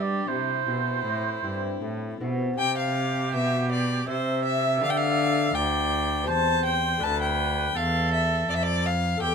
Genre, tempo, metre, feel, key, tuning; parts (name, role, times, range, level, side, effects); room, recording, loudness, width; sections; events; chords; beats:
classical, baroque-style sonata movement with continuo; 81 BPM; 3/4; uneven beats; C major; A4 = 441 Hz
rich violin; melody; 0.0-9.3 s; E4 to A5; -28 LUFS; left 4 dB
warm oboe; second line; 0.0-9.3 s; G4 to E5; -28 LUFS; right 5 dB
lute; accompaniment; 0.0-9.3 s; D2 to D5; -32 LUFS; left 4 dB
rich cello; bass; 0.0-9.3 s; D2 to G3; -28 LUFS; right 1 dB
light reverb; -23 LUFS; side -6 dB against mid
0.0-2.6 A section; 2.6-9.3 B section
0.3 C; 4.8 G7/D; 6.3 C/E; 7.0 Dm
| 0.28 1.05 1.82 | 2.58 3.34 4.08 | 4.81 5.54 6.28 | 7.02 7.75 8.49 | 9.22